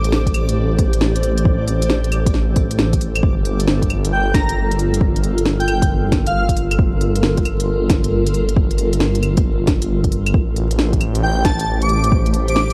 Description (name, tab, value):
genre	future garage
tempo	135 BPM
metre	4/4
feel	swing 65% on 16ths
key	G minor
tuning	A4 = 439 Hz
part	granular cloud pad	sustained chords	0.0-12.7 s	A3 to C5	-26 LUFS	equal	built-in reverb, vintage 12-bit sampler grit, sidechain pumping
part	swelling detuned saw bass	bass	0.0-12.7 s	G1 to A1	-21 LUFS	equal	sidechain pumping
part	organic electronic drum kit	drums	0.0-12.7 s	claves, hi-hat, snare drum	-24 LUFS	equal	overdrive, small room ambience
part	backwards swelling texture	texture	0.0-3.2 s	D5	-38 LUFS	equal	built-in reverb
part	electronic kick drum	drums	0.3-12.2 s	none	-20 LUFS	equal	overdrive, small room ambience
part	airy dreamy lead	melody	4.1-6.4, 11.2-12.7 s	F5 to D6	-25 LUFS	equal	chorus, analog delay
room	light reverb, digital ambience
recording	vinyl crackle, lossy compression artefacts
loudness	-17 LUFS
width	mono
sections	0.0-3.2 A section; 3.2-12.7 A section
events	none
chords	0.0 Am7; 3.2 Gm9; 10.3 Am7